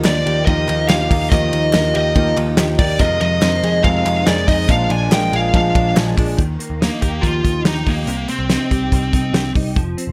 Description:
jangly indie pop; 142 BPM; 4/4; straight; Bb mixolydian; A4 = 439 Hz
picked steel-string acoustic guitar; accompaniment; 0.0-6.4 s; F2 to G4; -24 LUFS; equal
direct-recorded clean electric guitar; arpeggios; 0.0-10.1 s; Bb2 to Bb4; -28 LUFS; equal; ensemble chorus
vintage muted picked electric bass; bass; 0.0-10.1 s; F1 to F2; -23 LUFS; equal
group handclap; percussion; 0.0-6.1 s; -32 LUFS; equal
smooth overdriven lead guitar; melody; 0.1-9.5 s; Bb3 to Ab5; -22 LUFS; equal; slapback echo
loose indie drum kit; drums; 0.1-10.1 s; hi-hat, kick drum, ride cymbal, snare drum; -21 LUFS; equal
light reverb, small room ambience; -17 LUFS; mono
0.0-6.4 A section; 6.4-10.1 B section
0.0 Ebadd9; 3.0 Fm7; 4.7 Bb7; 6.4 Ebadd9; 8.1 Cm

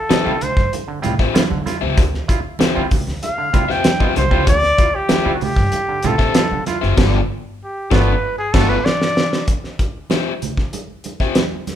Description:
funk; 96 BPM; 4/4; straight; D dorian; A4 = 440 Hz
mellow trumpet; melody; 0.0-9.5 s; F4 to G5; -20 LUFS; equal
overdriven electric guitar; accompaniment; 0.1-11.4 s; B3 to F5; -23 LUFS; left 6 dB
auto-wah clav; stabs; 0.1-8.8 s; G2 to F4; -25 LUFS; right 4 dB; overdrive
upright bass; bass; 0.1-8.8 s; F#1 to D3; -22 LUFS; equal
cloth-damped thuddy drum kit; drums; 0.1-11.8 s; crash cymbal, hi-hat, kick drum, snare drum; -18 LUFS; equal
congas; percussion; 0.1-11.8 s; -27 LUFS; right 4 dB
moderate large studio reverb, RT60 0.9 s; band playing live in one room; -15 LUFS; side -10 dB against mid
0.0-9.5 A section; 9.5-11.8 B section
trumpet solo 0.0-9.5; band accent 7.0-9.5; drum fill 8.2-9.5
0.0 Dm11; 7.0 G9; 9.5 Cadd11/F

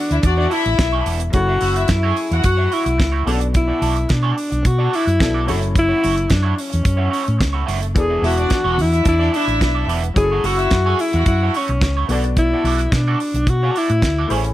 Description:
disco; 109 BPM; 4/4; straight; B minor; A4 = 441 Hz
breathy alto saxophone; melody; 0.0-14.3 s; C#4 to G#4; -20 LUFS; left 1 dB
clear baby grand piano; accompaniment; 0.0-14.5 s; B2 to D5; -29 LUFS; left 4 dB
warm studio violin section; second line; 0.1-2.7, 8.2-11.5 s; D4 to G#5; -24 LUFS; left 2 dB
electric guitar at the edge of break-up; accompaniment; 0.1-14.5 s; A3 to D5; -26 LUFS; right 7 dB; wah
hollow-body short-scale fingered electric bass; bass; 0.1-14.5 s; E1 to B2; -19 LUFS; equal
damped 70s drum kit; drums; 0.1-14.5 s; hi-hat, kick drum, snare drum; -20 LUFS; equal
small room reverb; -15 LUFS; side -14 dB against mid
0.0-14.5 A section
0.0 E7sus4; 1.3 F#m7; 3.3 Bm7; 5.5 F#m7; 8.0 E7sus4; 10.2 F#m7; 12.1 Bm7

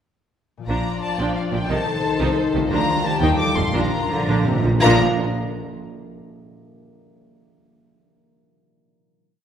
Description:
classical, dramatic, fast romantic movement for symphony orchestra; 176 BPM; 3/4; rubato; Bb major; A4 = 440 Hz
concert harp; arpeggios; 0.6-5.0 s; Bb2 to Eb5; -29 LUFS; left 3 dB
warm studio violin section; melody; 0.7-5.0 s; F5 to D6; -25 LUFS; left 2 dB
warm symphonic violin section; second line; 0.7-5.0 s; F4 to D5; -27 LUFS; left 3 dB
clear chamber viola section; accompaniment; 0.7-5.0 s; Eb3 to Eb4; -26 LUFS; right 2 dB
dark French horn section; sustained chords; 0.7-5.0 s; Eb3 to Eb4; -26 LUFS; left 2 dB
clear symphonic cello section; bass; 0.7-5.0 s; D2 to D3; -27 LUFS; right 2 dB
rich symphonic double bass section; bass; 0.7-5.0 s; F1 to Eb2; -27 LUFS; right 2 dB
timpani; percussion; 3.7-5.0 s; Bb2; -24 LUFS; right 1 dB
wet concert hall reverb, RT60 1.8 s; recorded in a church or concert hall; -18 LUFS; side -8 dB against mid
0.7-4.8 A section; 4.8-5.9 final chord
timpani fill 3.7-4.8
0.7 Bb; 1.7 Adim/C; 2.7 Bb/D; 3.0 Cm/Eb; 3.4 F9; 3.7 Bb

